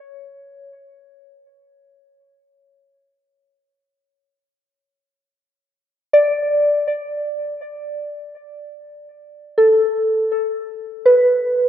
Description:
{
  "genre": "ambient",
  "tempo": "free time",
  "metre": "none",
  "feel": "none",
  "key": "unclear",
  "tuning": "A4 = 440 Hz",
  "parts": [
    { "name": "soft synth bell", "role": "solo", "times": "0.0-11.7 s", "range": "A4 to D5", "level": "-16 LUFS", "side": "equal", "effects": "chorus, analog delay" }
  ],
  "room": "wet spring reverb, RT60 2.6 s",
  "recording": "echo-heavy mix, cassette tape",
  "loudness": "-15 LUFS",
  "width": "side -10 dB against mid",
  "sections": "0.0-11.1 A section",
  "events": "none",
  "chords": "0.0 Aadd9; 11.1 F#madd11 (rootless)"
}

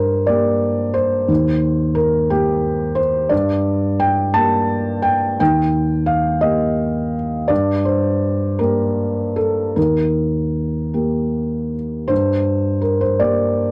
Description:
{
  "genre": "neoclassical minimalist piano",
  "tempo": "50-60 BPM (dotted quarters)",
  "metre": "6/8",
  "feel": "rubato",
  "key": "G minor",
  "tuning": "A4 = 442 Hz",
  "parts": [
    { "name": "felt-muted upright piano", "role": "solo", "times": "0.0-13.7 s", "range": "Eb2 to A5", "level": "-18 LUFS", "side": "equal", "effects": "none" }
  ],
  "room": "little or no reverb",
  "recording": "dry, close 1970s-style studio recording",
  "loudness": "-18 LUFS",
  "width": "mono",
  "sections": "0.0-12.1 A section; 12.1-13.7 A section",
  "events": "none",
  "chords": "0.0 Gm; 1.3 Eb; 3.3 Gm; 5.4 Eb; 7.5 Gm; 9.8 Eb; 12.1 Gm"
}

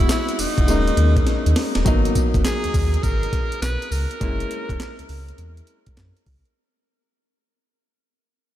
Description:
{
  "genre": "R&B, new jack swing",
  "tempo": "102 BPM",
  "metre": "4/4",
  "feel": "swing 66% on 16ths",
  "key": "G# minor",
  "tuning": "A4 = 436 Hz",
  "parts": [
    { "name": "bright tenor saxophone", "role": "melody", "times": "0.0-6.0 s", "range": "D#4 to B4", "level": "-27 LUFS", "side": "right 1 dB", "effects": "low-pass filter, analog delay" },
    { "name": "clear concert grand piano", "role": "accompaniment", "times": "0.0-6.6 s", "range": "F#3 to F#4", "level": "-26 LUFS", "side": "left 2 dB", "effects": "low-pass filter" },
    { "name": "sub bass with octave", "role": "bass", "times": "0.0-6.4 s", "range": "D#1 to F#2", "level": "-21 LUFS", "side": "equal", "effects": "none" },
    { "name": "breakbeat sampler-style drum kit", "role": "drums", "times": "0.0-6.6 s", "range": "handclaps, hi-hat, kick drum, snare drum, tambourine", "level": "-22 LUFS", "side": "equal", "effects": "none" }
  ],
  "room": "light reverb",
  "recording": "none",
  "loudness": "-18 LUFS",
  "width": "side -13 dB against mid",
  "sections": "0.0-1.9 A section; 1.9-6.6 B section",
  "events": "drum fill 1.3-1.9; fade-out 1.9-6.6",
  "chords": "0.0 E6; 0.7 D#7sus4; 1.9 G#m9; 4.2 F#7"
}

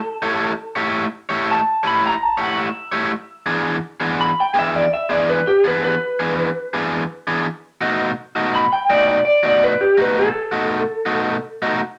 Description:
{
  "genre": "blues",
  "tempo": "111 BPM",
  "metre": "4/4",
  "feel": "swing 68% on 8ths",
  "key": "unclear",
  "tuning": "A4 = 441 Hz",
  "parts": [
    { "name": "electric guitar through a small old amp", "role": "melody", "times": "0.0-11.8 s", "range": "G4 to B5", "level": "-20 LUFS", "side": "equal", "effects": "spring reverb" },
    { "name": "crunchy overdriven guitar", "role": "riff", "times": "0.2-11.8 s", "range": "B2 to C#5", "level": "-22 LUFS", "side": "equal", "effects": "none" }
  ],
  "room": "moderate studio reverb, RT60 0.5 s",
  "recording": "none",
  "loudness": "-19 LUFS",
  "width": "mono",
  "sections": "0.0-12.0 A section",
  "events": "stop 11.8",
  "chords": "0.0 A7; 3.1 E7; 7.5 B7"
}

